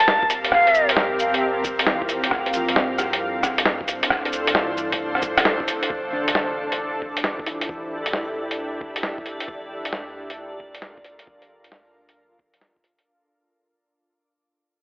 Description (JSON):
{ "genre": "future garage", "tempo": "134 BPM", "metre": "4/4", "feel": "swing 66% on 16ths", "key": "unclear", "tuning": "A4 = 440 Hz", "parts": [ { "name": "bright reedy wooden flute", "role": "melody", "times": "0.0-0.9 s", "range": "F5 to A5", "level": "-18 LUFS", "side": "equal", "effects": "tape echo" }, { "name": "felt-muted upright piano", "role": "accompaniment", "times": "0.0-9.5 s", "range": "D3 to G3", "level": "-35 LUFS", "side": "equal", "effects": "sidechain pumping, tape echo" }, { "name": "granular cloud pad", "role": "sustained chords", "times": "0.0-13.1 s", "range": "C4 to F5", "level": "-26 LUFS", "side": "equal", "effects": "built-in reverb, sidechain pumping" }, { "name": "warm sub bass", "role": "bass", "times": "0.0-13.0 s", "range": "D1 to G2", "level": "-46 LUFS", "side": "equal", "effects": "sidechain pumping" }, { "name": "lo-fi sampler-style drum kit", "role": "drums", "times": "0.0-13.0 s", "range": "cabasa, hi-hat, rim click, snare drum", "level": "-21 LUFS", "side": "equal", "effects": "none" }, { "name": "electronic kick drum", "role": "drums", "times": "0.2-12.8 s", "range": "none", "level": "-35 LUFS", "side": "equal", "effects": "none" }, { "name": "backwards swelling texture", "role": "texture", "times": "7.1-13.1 s", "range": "D5", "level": "-41 LUFS", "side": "equal", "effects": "built-in reverb" } ], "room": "moderate lush hall reverb, RT60 2.0 s, digital ambience", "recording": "telephone sound", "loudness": "-20 LUFS", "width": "side -27 dB against mid", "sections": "0.0-5.9 A section; 5.9-13.1 B section", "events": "fade-out 5.9-13.1", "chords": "0.0 C7sus4; 2.3 Dm7; 5.9 A7sus4; 9.5 Bbmaj7" }